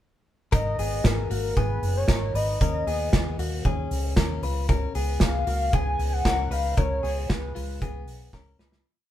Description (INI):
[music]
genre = jangly indie pop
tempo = 115 BPM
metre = 4/4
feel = straight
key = unclear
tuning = A4 = 436 Hz
[part]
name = warbly nostalgic lead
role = melody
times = 0.5-8.3 s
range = Bb4 to Ab5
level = -29 LUFS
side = left 1 dB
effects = chorus
[part]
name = direct-recorded clean electric guitar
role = arpeggios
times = 0.5-8.9 s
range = Ab3 to Cb5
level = -32 LUFS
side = left 5 dB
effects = none
[part]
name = vintage muted fingered electric bass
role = bass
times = 0.5-8.8 s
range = Gb1 to Eb2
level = -28 LUFS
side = equal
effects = none
[part]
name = loose indie drum kit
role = drums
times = 0.5-8.8 s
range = hi-hat, kick drum, snare drum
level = -26 LUFS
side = equal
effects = none
[sound]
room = light reverb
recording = band playing live in one room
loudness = -23 LUFS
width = side -12 dB against mid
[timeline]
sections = 0.5-8.9 pre-chorus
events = fade-out 6.8-8.9; drum fill 8.3-8.9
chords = 0.5 Abmadd9; 2.6 Ebm7; 4.4 Db7(no3)